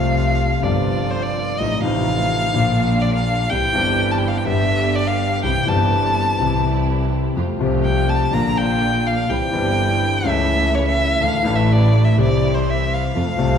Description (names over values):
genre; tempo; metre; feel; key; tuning
tango; 125 BPM; 4/4; rubato; unclear; A4 = 440 Hz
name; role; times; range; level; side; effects
rich violin; second line; 0.0-13.6 s; C5 to Bb5; -21 LUFS; equal; none
warm concert grand piano; accompaniment; 0.0-13.6 s; G1 to A4; -19 LUFS; left 3 dB; none
dark symphonic string section; stabs; 0.0-13.6 s; G3 to G4; -28 LUFS; right 4 dB; none
clear double bass; bass; 0.0-13.6 s; G1 to F2; -23 LUFS; right 2 dB; none
room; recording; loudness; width
wet scoring stage reverb, RT60 1.6 s; recorded in a church or concert hall; -16 LUFS; side -7 dB against mid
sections
0.0-13.6 A section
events
violin solo 0.0-13.6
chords
0.0 F; 0.6 Csus4/G; 1.6 F7/A; 2.6 Bb; 3.5 C; 4.5 G; 5.4 C; 7.4 Fadd9; 8.3 Bb; 9.3 C; 10.3 A/C#; 11.2 Dsus2; 12.2 C